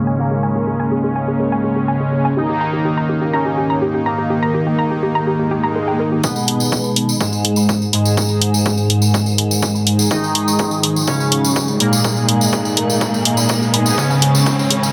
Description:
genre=melodic techno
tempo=124 BPM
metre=4/4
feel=straight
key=unclear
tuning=A4 = 440 Hz
part: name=resonant sweep polysynth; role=melody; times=0.0-14.9 s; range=G#3 to D#4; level=-24 LUFS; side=equal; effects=chorus, sidechain pumping, delay
part: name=deep dark ambient pad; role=sustained chords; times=0.0-14.9 s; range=C#3 to D#5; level=-30 LUFS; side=equal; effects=none
part: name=warbly dusty pluck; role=arpeggios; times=0.0-14.9 s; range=G4 to B5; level=-26 LUFS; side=equal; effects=chorus, sidechain pumping, delay
part: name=brassy analog pad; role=stabs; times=0.0-14.9 s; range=C#3 to G#4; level=-23 LUFS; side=equal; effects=chorus, sidechain pumping, delay
part: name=overtone-sweeping drone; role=drone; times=0.0-14.9 s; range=G#2 to D#3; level=-32 LUFS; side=equal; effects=chorus, built-in reverb, sidechain pumping
part: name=swell and riser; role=sound effects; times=5.4-14.9 s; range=none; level=-30 LUFS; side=equal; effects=none
part: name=airy dreamy lead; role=second line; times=6.2-14.9 s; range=G#2 to D#3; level=-21 LUFS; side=equal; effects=chorus, cassette tape, sidechain pumping
part: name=electronic kick drum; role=drums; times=6.2-14.6 s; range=none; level=-24 LUFS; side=equal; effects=high-pass filter on kick, high-pass filter on room
part: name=tambourine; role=percussion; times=6.2-14.9 s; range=none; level=-25 LUFS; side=equal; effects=none
part: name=electronic hi-hat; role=drums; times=6.5-14.8 s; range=none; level=-18 LUFS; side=equal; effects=none
room=light reverb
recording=low-pass filter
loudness=-17 LUFS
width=mono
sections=0.0-6.2 A section; 6.2-14.9 B section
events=filter sweep on synth arpeggio sound 0.0-6.2; filter sweep on ambient pad 0.0-6.2; filter sweep 0.0-6.2; swell 5.4-6.2; build-up 6.2-14.9; riser 6.2-14.9; filter sweep on analog synth pad 6.2-14.9; drum fill 14.0-14.9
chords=0.0 C#sus2; 2.4 D#; 6.2 G#m; 14.0 C#sus2

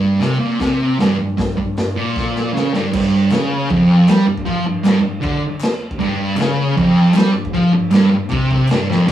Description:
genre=garage rock duo or trio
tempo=156 BPM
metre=4/4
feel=straight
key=unclear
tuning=A4 = 440 Hz
part: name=thick fuzz guitar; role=riff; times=0.0-9.1 s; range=F2 to G3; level=-14 LUFS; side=right 1 dB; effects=distortion
part: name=raw garage drum kit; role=drums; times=0.2-9.1 s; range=crash cymbal, hi-hat, kick drum, snare drum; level=-22 LUFS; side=equal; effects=none
part: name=group handclap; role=percussion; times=3.3-8.8 s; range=none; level=-37 LUFS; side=left 4 dB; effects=none
room=moderate studio reverb, RT60 0.6 s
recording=rough rehearsal-room recording, warm saturation, small room reverb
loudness=-14 LUFS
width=side -12 dB against mid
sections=0.0-2.9 A section; 2.9-9.1 B section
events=drum fill 2.1-2.9, 8.9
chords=0.0 Fsus4 (rootless); 2.9 G5

